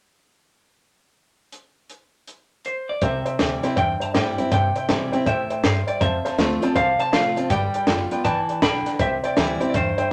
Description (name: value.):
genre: rockabilly.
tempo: 161 BPM.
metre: 4/4.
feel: swing 64% on 8ths.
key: C major.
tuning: A4 = 440 Hz.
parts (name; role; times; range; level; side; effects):
compact cocktail drum kit; drums; 1.5-10.0 s; hi-hat, kick drum, snare drum; -26 LUFS; equal; none.
clean electric guitar; melody; 2.7-10.1 s; C5 to B5; -27 LUFS; equal; none.
picked steel-string acoustic guitar; accompaniment; 3.0-10.1 s; F2 to F4; -28 LUFS; equal; none.
warm upright piano; accompaniment; 3.0-10.1 s; B4 to A5; -28 LUFS; equal; none.
upright bass; bass; 3.0-10.0 s; F#1 to C3; -31 LUFS; equal; none.
room: moderate studio reverb, RT60 0.5 s.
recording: none.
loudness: -22 LUFS.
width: mono.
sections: 1.5-3.0 A section; 3.0-9.0 B section; 9.0-10.1 C section.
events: none.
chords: 1.5 N.C.; 3.0 C; 6.0 F; 7.5 G7; 9.0 C.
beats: | 1.52 1.90 2.27 2.65 | 3.02 3.39 3.77 4.14 | 4.52 4.89 5.26 5.64 | 6.01 6.38 6.76 7.13 | 7.50 7.88 8.25 8.62 | 9.00 9.37 9.74 10.12.